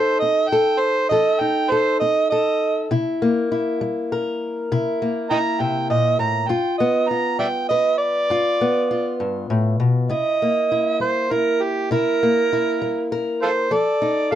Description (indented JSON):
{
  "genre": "acoustic country blues, solo or duo",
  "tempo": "67 BPM (dotted quarters)",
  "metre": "12/8",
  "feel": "straight",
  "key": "C mixolydian",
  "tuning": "A4 = 440 Hz",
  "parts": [
    { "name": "overdriven harmonica", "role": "melody", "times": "0.0-14.4 s", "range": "F4 to Bb5", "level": "-19 LUFS", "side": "right 3 dB", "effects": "none" },
    { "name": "fingerpicked old ladder-braced acoustic guitar", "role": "accompaniment", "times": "0.0-14.4 s", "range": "G2 to B4", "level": "-21 LUFS", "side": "left 2 dB", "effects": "none" }
  ],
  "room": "moderate studio reverb, RT60 0.5 s",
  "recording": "dark, warm production",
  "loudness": "-18 LUFS",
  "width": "side -11 dB against mid",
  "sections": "0.0-10.1 A section; 10.1-14.4 B section",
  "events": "harmonica solo 0.0-10.1",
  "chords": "0.0 F7; 2.9 C7; 6.5 G7; 10.1 C7; 13.7 F7"
}